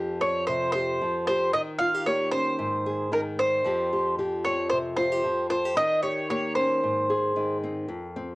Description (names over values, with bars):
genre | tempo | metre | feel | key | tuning
highlife | 113 BPM | 4/4 | swing 54% on 16ths | F minor | A4 = 440 Hz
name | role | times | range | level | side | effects
nylon-string guitar | accompaniment | 0.0-8.3 s | F2 to Ab4 | -29 LUFS | left 1 dB | none
mandolin | melody | 0.2-7.6 s | Bb4 to F5 | -24 LUFS | equal | cassette tape
room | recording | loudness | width
moderate studio reverb, RT60 0.6 s | home recording on cassette | -23 LUFS | side -21 dB against mid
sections
0.0-7.9 A section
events
none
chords
0.0 Fsus2; 1.5 Eb7; 2.6 Ab; 3.6 Fsus2; 5.8 Eb7; 6.8 Ab